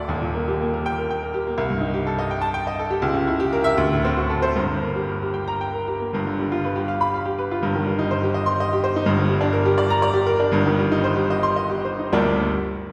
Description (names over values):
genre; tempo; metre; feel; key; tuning
classical, virtuoso piano study; 69-86 BPM (dotted quarters); 6/8; rubato; G minor; A4 = 440 Hz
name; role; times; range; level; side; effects
clear baby grand piano; solo; 0.0-12.5 s; Eb1 to C6; -22 LUFS; equal; none
room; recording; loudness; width
wet concert hall reverb, RT60 1.9 s; heard from further back in the room; -22 LUFS; mono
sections
0.0-6.1 A section; 6.1-12.1 B section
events
none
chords
0.1 Eb; 1.6 Am7b5/C; 3.0 C#dim7; 3.8 D7; 4.6 Gm; 6.1 G7; 7.6 Cm/G; 9.1 Gm; 10.5 Cm/G; 12.1 Gm